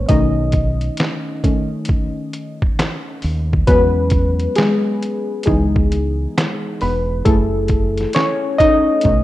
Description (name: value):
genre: lo-fi hip hop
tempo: 67 BPM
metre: 4/4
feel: swing 65% on 16ths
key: unclear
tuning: A4 = 440 Hz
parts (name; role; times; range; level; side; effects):
- warm analog keys; accompaniment; 0.0-9.2 s; D#3 to D#5; -18 LUFS; left 1 dB; chorus, cassette tape
- deep dub fingered electric bass; bass; 0.0-9.2 s; E1 to E2; -19 LUFS; equal; none
- trip hop sampler-style drum kit; drums; 0.1-9.2 s; handclaps, hi-hat, kick drum, snare drum; -18 LUFS; equal; none
room: light reverb, digital ambience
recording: rough home demo mix, cassette tape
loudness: -15 LUFS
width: side -15 dB against mid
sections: 0.0-9.2 A section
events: synth keys solo 0.0-9.2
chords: 0.1 B9; 3.7 E69; 5.5 C#m9; 7.3 F#m7